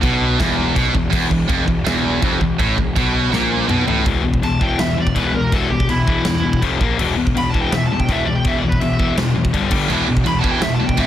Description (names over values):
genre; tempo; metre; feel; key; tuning
heavy metal; 164 BPM; 4/4; straight; unclear; A4 = 440 Hz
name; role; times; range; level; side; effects
distorted electric guitar; riff; 0.0-11.1 s; E2 to A#3; -20 LUFS; left 5 dB; overdrive
tight distorted guitar; riff; 0.0-4.0, 9.9-11.1 s; E2 to E3; -21 LUFS; right 10 dB; distortion
fuzz picked electric bass; bass; 0.0-11.1 s; E1 to B1; -23 LUFS; equal; overdrive
big rock drum kit; drums; 0.0-11.1 s; china cymbal, crash cymbal, kick drum, snare drum, toms; -20 LUFS; equal; none
smooth overdriven lead guitar; melody; 4.4-11.1 s; E4 to B5; -23 LUFS; right 1 dB; none
room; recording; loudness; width
light reverb, small room ambience; dense, heavily limited modern master; -15 LUFS; side -11 dB against mid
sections
0.0-4.1 A section; 4.1-11.1 B section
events
drum fill 3.3-4.1; lead electric guitar solo 4.1-11.1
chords
0.0 E5; 6.6 F5; 6.8 A#5; 7.0 E5; 9.5 G5; 9.9 E5